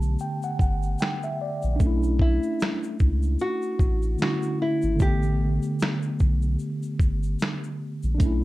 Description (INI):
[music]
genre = lo-fi hip hop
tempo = 75 BPM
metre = 4/4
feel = swing 58% on 16ths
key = unclear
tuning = A4 = 440 Hz
[part]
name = nylon-string guitar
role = melody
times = 0.0-6.6 s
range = D4 to G4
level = -29 LUFS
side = left 1 dB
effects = low-pass filter, plate reverb
[part]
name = mellow tine electric piano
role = accompaniment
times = 0.0-8.4 s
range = D3 to A5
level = -28 LUFS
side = equal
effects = medium stereo tremolo, cassette tape, low-pass filter, plate reverb
[part]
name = soft dub sub bass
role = bass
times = 0.0-8.4 s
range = G1 to C#2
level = -25 LUFS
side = equal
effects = none
[part]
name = tube shaker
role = percussion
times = 0.0-8.4 s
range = none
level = -53 LUFS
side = left 6 dB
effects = none
[part]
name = lo-fi sampler-style drum kit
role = drums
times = 0.6-8.4 s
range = finger snaps, hi-hat, kick drum, snare drum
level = -23 LUFS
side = equal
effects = none
[sound]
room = moderate studio ambience, RT60 0.5 s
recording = dark, warm production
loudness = -22 LUFS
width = side -18 dB against mid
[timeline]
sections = 0.0-8.4 A section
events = break 0.0-8.2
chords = 0.0 A9sus4; 1.8 Bm11; 5.0 A9sus4